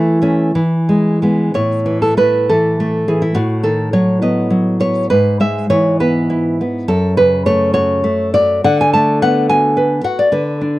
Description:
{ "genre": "romantic piece for solo classical guitar", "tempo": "57-72 BPM (dotted quarters)", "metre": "6/8", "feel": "rubato", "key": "A major", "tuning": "A4 = 440 Hz", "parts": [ { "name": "nylon-string guitar", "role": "solo", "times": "0.0-10.8 s", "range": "F#2 to A5", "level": "-12 LUFS", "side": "equal", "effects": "none" } ], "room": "little or no reverb", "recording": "dry, close 1970s-style studio recording", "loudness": "-12 LUFS", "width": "side -17 dB against mid", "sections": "0.0-1.5 A section; 1.5-10.8 B section", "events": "none", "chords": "0.0 A/E; 0.5 E; 1.5 A5; 3.4 B7/A; 5.1 E/G#; 6.9 F#m; 8.6 Bm7/D" }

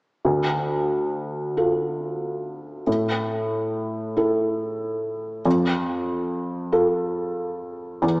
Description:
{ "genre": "classical", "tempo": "46 BPM (dotted quarters)", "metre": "6/8", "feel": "rubato", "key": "D minor", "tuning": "A4 = 443 Hz", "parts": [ { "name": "felt-muted upright piano", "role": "accompaniment", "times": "0.2-8.2 s", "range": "D2 to A4", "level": "-22 LUFS", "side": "equal", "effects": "none" } ], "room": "wet concert hall reverb, RT60 1.8 s", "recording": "recorded in a church or concert hall, small speaker sound", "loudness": "-22 LUFS", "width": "side -26 dB against mid", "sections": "0.3-8.2 A section", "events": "none", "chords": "0.3 Dm; 2.9 A5; 5.5 F" }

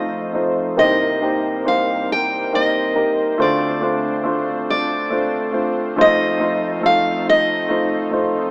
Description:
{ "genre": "acoustic folk-pop ballad", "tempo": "46 BPM (dotted quarters)", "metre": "6/8", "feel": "straight", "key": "unclear", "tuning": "A4 = 440 Hz", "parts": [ { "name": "picked steel-string acoustic guitar", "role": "melody", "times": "0.0-8.5 s", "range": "D5 to G5", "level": "-22 LUFS", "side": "equal", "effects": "none" }, { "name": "warm upright piano", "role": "accompaniment", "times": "0.0-8.5 s", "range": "F1 to F5", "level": "-22 LUFS", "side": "equal", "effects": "none" }, { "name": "brassy analog pad", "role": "sustained chords", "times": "0.0-8.5 s", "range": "F3 to C5", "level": "-29 LUFS", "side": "equal", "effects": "chorus, tremolo" } ], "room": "moderate lush hall reverb, RT60 2.5 s", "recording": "rough home demo mix, AM radio sound", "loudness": "-19 LUFS", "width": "mono", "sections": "0.0-8.5 A section", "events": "none", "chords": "0.0 F7; 0.8 Cm7; 3.4 Dm7; 6.0 F7" }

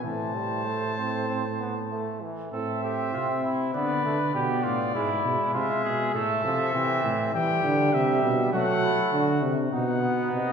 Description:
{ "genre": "classical, imitative canzona for brass ensemble", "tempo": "100 BPM", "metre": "4/4", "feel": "straight", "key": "A minor", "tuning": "A4 = 440 Hz", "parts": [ { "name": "mellow trumpet", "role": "melody", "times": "0.0-10.5 s", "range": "D5 to A5", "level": "-30 LUFS", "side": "left 5 dB", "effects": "none" }, { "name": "clear flugelhorn", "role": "second line", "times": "0.0-10.5 s", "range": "C4 to C5", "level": "-30 LUFS", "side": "right 3 dB", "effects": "none" }, { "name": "brilliant trombone", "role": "accompaniment", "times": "0.0-10.5 s", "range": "E3 to C4", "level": "-30 LUFS", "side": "right 1 dB", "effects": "none" }, { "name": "mellow bass trombone", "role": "bass", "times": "0.0-10.5 s", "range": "G#2 to F#3", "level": "-28 LUFS", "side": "right 1 dB", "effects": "none" } ], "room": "wet concert hall reverb, RT60 1.9 s", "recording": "recorded in a church or concert hall", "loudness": "-23 LUFS", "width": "side -6 dB against mid", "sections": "0.0-2.5 A section; 2.5-10.5 B section", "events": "none", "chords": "0.0 Am; 3.7 Bdim/D; 4.9 E/G#; 6.1 Am; 7.3 Em; 8.5 F#dim; 9.7 B" }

